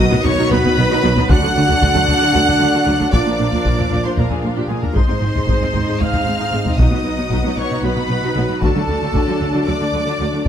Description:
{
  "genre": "cinematic, epic orchestral film score",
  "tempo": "229 BPM (eighths)",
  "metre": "7/8",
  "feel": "straight",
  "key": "unclear",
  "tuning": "A4 = 441 Hz",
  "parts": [
    { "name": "rich symphonic violin section", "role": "melody", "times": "0.0-10.5 s", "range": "F5 to F#6", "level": "-26 LUFS", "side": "left 2 dB", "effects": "none" },
    { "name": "rich chamber violin section", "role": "second line", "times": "0.0-10.5 s", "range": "F4 to F#5", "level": "-26 LUFS", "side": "right 1 dB", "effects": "none" },
    { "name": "rich symphonic viola section", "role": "accompaniment", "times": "0.0-10.4 s", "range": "F3 to Ab4", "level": "-24 LUFS", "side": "right 1 dB", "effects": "none" },
    { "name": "dark French horn section", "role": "sustained chords", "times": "0.0-10.5 s", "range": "A3 to F#4", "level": "-24 LUFS", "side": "left 4 dB", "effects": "none" },
    { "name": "rich symphonic string section", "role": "sustained chords", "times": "0.0-10.5 s", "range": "B3 to F#5", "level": "-26 LUFS", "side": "left 1 dB", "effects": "none" },
    { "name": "warm trombone section", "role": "sustained chords", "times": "0.0-10.4 s", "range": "Ab2 to Ab3", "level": "-26 LUFS", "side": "right 3 dB", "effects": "none" },
    { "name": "clear trumpet section", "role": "stabs", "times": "0.0-10.5 s", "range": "F4 to F#5", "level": "-23 LUFS", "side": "right 1 dB", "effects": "none" },
    { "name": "rich symphonic cello section", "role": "bass", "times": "0.0-10.5 s", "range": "Ab2 to D3", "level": "-23 LUFS", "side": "right 1 dB", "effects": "none" },
    { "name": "rich symphonic double bass section", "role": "bass", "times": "0.0-10.5 s", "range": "Ab1 to D2", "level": "-23 LUFS", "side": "right 2 dB", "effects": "none" },
    { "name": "taiko ensemble", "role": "drums", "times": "0.1-10.5 s", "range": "none", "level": "-20 LUFS", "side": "left 1 dB", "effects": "none" }
  ],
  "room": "moderate recital hall reverb, RT60 1.6 s",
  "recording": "none",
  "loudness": "-14 LUFS",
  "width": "side -9 dB against mid",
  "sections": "0.0-10.5 A section",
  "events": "none",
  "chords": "0.0 B; 1.3 D; 3.1 Bb; 5.0 Ab; 6.8 B; 8.6 D",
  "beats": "0.25 0.51 0.77 1.03 | 1.29 1.55 1.82 2.08 2.34 2.60 2.86 | 3.12 3.38 3.65 3.91 4.17 4.43 4.69 | 4.95 5.22 5.48 5.74 6.00 6.26 6.52 | 6.79 7.05 7.31 7.57 7.83 8.09 8.36 | 8.62 8.88 9.14 9.40 9.66 9.92 10.19 | 10.45"
}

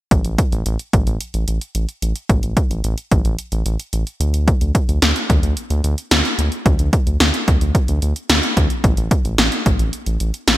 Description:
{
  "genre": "synth-pop",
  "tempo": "110 BPM",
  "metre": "4/4",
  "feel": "straight",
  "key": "unclear",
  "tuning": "A4 = 442 Hz",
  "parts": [
    { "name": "round analog bass", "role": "bass", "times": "0.1-10.6 s", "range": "A1 to D2", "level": "-19 LUFS", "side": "equal", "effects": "none" },
    { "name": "punchy analog drum machine", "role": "drums", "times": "0.1-10.6 s", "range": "hi-hat, kick drum, snare drum", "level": "-16 LUFS", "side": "equal", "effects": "overdrive, gated reverb" }
  ],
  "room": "light reverb",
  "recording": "bright 1980s-style digital production",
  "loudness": "-16 LUFS",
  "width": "side -15 dB against mid",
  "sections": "0.1-8.8 A section; 8.8-10.6 B section",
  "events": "none",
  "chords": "none",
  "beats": "| 0.11 0.66 1.20 1.75 | 2.29 2.84 3.38 3.93 | 4.48 5.02 5.57 6.11 | 6.66 7.20 7.75 8.29 | 8.84 9.38 9.93 10.48"
}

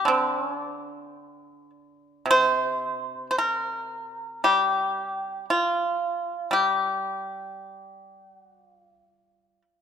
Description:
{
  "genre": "chinese traditional",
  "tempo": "53-60 BPM",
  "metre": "4/4",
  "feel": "rubato",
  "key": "unclear",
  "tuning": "A4 = 435 Hz",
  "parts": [
    { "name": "pipa", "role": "solo", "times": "0.0-9.8 s", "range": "C3 to C5", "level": "-23 LUFS", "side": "equal", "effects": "none" }
  ],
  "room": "moderate concert hall reverb, RT60 2.0 s",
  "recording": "minimal, uncompressed stereo recording",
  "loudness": "-23 LUFS",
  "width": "side -8 dB against mid",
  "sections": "0.0-2.3 A section; 2.3-9.8 B section",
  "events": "none",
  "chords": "none",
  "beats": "0.06 1.17 | 2.27 3.36 4.44 5.49 | 6.51 7.56 8.60 9.62"
}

